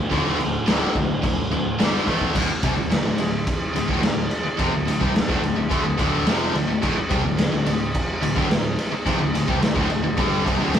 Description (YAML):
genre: hard rock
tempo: 107 BPM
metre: 4/4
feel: straight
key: unclear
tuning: A4 = 436 Hz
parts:
  - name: crunchy overdriven guitar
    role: riff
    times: 0.0-10.8 s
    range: D2 to F#4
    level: -32 LUFS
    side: right 2 dB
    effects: none
  - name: high-gain distorted guitar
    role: riff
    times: 0.0-10.8 s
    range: D2 to A3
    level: -29 LUFS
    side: right 7 dB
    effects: distortion
  - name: tight distorted guitar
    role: riff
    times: 0.0-10.8 s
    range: D2 to A3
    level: -25 LUFS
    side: left 4 dB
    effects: distortion
  - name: picked electric bass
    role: bass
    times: 0.1-10.8 s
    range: D1 to D2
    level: -29 LUFS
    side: equal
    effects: none
  - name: raw garage drum kit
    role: drums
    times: 0.1-10.8 s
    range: crash cymbal, kick drum, ride cymbal, snare drum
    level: -22 LUFS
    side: equal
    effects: none
room: moderate stone room reverb, RT60 1.1 s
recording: rough rehearsal-room recording, warm saturation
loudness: -19 LUFS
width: side -9 dB against mid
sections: 0.0-2.3 A section; 2.3-10.8 B section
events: none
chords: 0.0 D; 1.8 G5; 2.1 A5; 2.3 D5